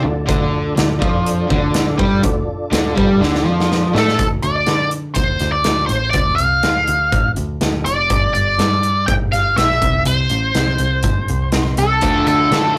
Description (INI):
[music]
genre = classic rock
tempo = 123 BPM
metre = 4/4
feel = straight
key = D minor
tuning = A4 = 440 Hz
[part]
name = mellow tonewheel organ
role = sustained chords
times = 0.0-4.2 s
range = D4 to A5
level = -28 LUFS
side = equal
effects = slow rotary speaker, chorus vibrato
[part]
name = overdriven semi-hollow guitar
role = riff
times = 0.0-4.2, 12.0-12.8 s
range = D3 to A4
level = -24 LUFS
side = equal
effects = none
[part]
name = overdriven semi-hollow guitar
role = riff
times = 0.0-4.2, 12.0-12.8 s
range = D3 to D4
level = -22 LUFS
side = equal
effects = none
[part]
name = overdriven picked electric bass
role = bass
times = 0.0-12.8 s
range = F1 to D3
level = -23 LUFS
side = equal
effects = none
[part]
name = big rock drum kit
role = drums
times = 0.3-12.6 s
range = hi-hat, kick drum, snare drum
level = -23 LUFS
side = equal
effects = none
[part]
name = octave-fuzz lead guitar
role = melody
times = 4.0-12.8 s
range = A4 to G5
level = -19 LUFS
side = equal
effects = wah, distortion
[sound]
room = moderate small room reverb, RT60 0.5 s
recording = rough rehearsal-room recording, tube saturation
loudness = -16 LUFS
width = mono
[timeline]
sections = 0.0-4.2 A section; 4.2-12.8 B section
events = drum fill 3.2-4.2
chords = 0.0 Dm; 8.1 G; 9.8 C5; 12.0 Dm